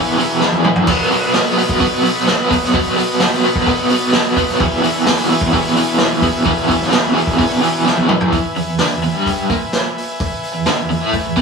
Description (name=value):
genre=garage rock duo or trio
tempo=129 BPM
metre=4/4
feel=straight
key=E major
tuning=A4 = 440 Hz
part: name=combo organ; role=sustained chords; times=0.0-11.4 s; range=B4 to G#5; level=-24 LUFS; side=left 1 dB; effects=none
part: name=overdriven electric guitar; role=riff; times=0.0-11.4 s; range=E2 to D4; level=-15 LUFS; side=right 1 dB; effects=tremolo
part: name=vintage drum kit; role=drums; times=0.2-11.4 s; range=crash cymbal, hi-hat, kick drum, snare drum, toms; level=-18 LUFS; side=equal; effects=none
room=moderate stone room reverb, RT60 1.3 s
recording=rough rehearsal-room recording, small room ambience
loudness=-13 LUFS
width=side -5 dB against mid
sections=0.0-8.3 A section; 8.3-11.4 B section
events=drum fill 0.4-0.9, 7.9-8.3; transistor combo organ fill 7.6-8.3, 11.1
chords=0.0 E; 0.9 B; 4.6 E